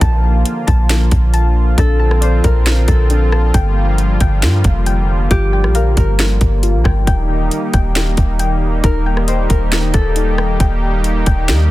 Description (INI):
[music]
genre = hip hop, atmospheric cloud-rap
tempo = 136 BPM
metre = 4/4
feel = half-time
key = Bb major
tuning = A4 = 438 Hz
[part]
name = concert harp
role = melody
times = 0.0-11.7 s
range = G4 to C5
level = -22 LUFS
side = left 4 dB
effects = tape echo
[part]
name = warm analog pad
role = sustained chords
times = 0.0-11.7 s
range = D3 to G4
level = -21 LUFS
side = equal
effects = chorus, sidechain pumping
[part]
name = soft round pluck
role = arpeggios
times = 0.0-11.7 s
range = D4 to A5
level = -25 LUFS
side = left 6 dB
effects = chorus, tape echo
[part]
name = soft 808-style bass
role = bass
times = 0.0-11.7 s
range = Eb1 to G2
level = -14 LUFS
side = equal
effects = none
[part]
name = trap drum kit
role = drums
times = 0.0-11.6 s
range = hi-hat, kick drum, rim click, snare drum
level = -16 LUFS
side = equal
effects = none
[sound]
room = little or no reverb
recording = dense, heavily limited modern master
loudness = -12 LUFS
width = side -16 dB against mid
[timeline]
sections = 0.0-11.7 A section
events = none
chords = 0.0 Bbmaj7; 3.5 Gm7; 7.1 Eb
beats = | 0.01 0.46 0.90 1.34 | 1.78 2.22 2.66 3.10 | 3.54 3.98 4.43 4.87 | 5.31 5.75 6.19 6.63 | 7.07 7.51 7.96 8.40 | 8.84 9.28 9.72 10.16 | 10.60 11.04 11.48